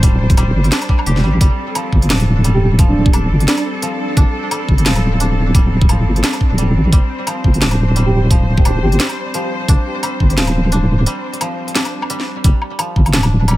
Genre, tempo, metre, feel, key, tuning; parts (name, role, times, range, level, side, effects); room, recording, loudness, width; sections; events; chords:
half-time drum and bass; 174 BPM; 4/4; swing 56% on 16ths, half-time; A4 = 439 Hz
bright symphonic cello section; sustained chords; 0.0-12.4 s; G3 to C5; -24 LUFS; left 2 dB; sidechain pumping
koto; arpeggios; 0.0-13.6 s; F3 to G4; -24 LUFS; right 1 dB; tape echo
deep soft wobble bass; bass; 0.0-13.6 s; D1 to Bb1; -14 LUFS; equal; chorus, tube saturation
drum and bass drum kit; drums; 0.0-13.6 s; hi-hat, snare drum, woodblock; -20 LUFS; equal
electronic kick drum; drums; 0.0-10.3, 12.4-13.0 s; -12 LUFS; equal
breathy flute-like synth lead; melody; 2.5-3.6, 8.1-9.0 s; D4 to G4; -23 LUFS; right 2 dB; chorus, cassette tape, tape echo
little or no reverb; echo-heavy mix; -12 LUFS; side -16 dB against mid
0.0-12.4 A section; 12.4-13.6 A section
drop 0.0-12.4, 12.4-13.6; break 11.1-12.4
0.0 Gsus2; 12.4 G5